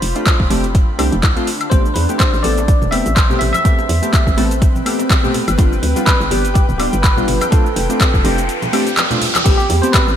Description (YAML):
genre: deep house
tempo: 124 BPM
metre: 4/4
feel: swing 56% on 16ths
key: A minor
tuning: A4 = 440 Hz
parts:
  - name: bell-like tine electric piano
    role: melody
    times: 0.0-10.2 s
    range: G4 to E5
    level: -22 LUFS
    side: equal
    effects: analog chorus, digital delay
  - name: hollow knocking FM bass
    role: bass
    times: 0.0-10.2 s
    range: D1 to E2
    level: -19 LUFS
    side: equal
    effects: sidechain pumping
  - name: deep house drum kit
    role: drums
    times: 0.0-10.2 s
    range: crash cymbal, handclaps, hi-hat, shaker, woodblock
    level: -20 LUFS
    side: left 1 dB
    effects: overdrive, studio ambience, gated reverb
  - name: granular cloud pad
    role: texture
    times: 0.0-9.5 s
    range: C4 to B5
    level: -25 LUFS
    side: equal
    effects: built-in reverb, sidechain pumping
  - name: warm analog keys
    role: stabs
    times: 0.2-10.1 s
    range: G3 to A4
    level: -21 LUFS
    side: left 1 dB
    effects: chorus, sidechain pumping, low-pass filter, ping-pong delay
  - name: electronic kick drum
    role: drums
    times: 0.3-10.0 s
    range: none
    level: -14 LUFS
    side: equal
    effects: overdrive, studio ambience
  - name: bongos and congas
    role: percussion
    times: 1.7-10.2 s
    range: none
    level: -28 LUFS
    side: right 2 dB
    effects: none
  - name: riser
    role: sound effects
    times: 7.4-9.5 s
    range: none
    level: -25 LUFS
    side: right 2 dB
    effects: none
  - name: airy breathy pad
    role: sustained chords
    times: 9.5-10.2 s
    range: A3 to B5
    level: -26 LUFS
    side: right 4 dB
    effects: none
room: light reverb, digital ambience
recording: bright 1980s-style digital production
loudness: -12 LUFS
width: side -9 dB against mid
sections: 0.0-9.5 A section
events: riser 7.4-9.5; drum fill 9.0-9.5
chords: 0.0 F6; 1.7 Am9; 5.6 G7; 7.5 F6; 9.5 Am9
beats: 0.26 0.75 1.23 | 1.72 2.20 2.68 3.17 | 3.65 4.13 4.62 5.10 | 5.59 6.07 6.55 7.04 | 7.52 8.01 8.49 8.97 | 9.46 9.94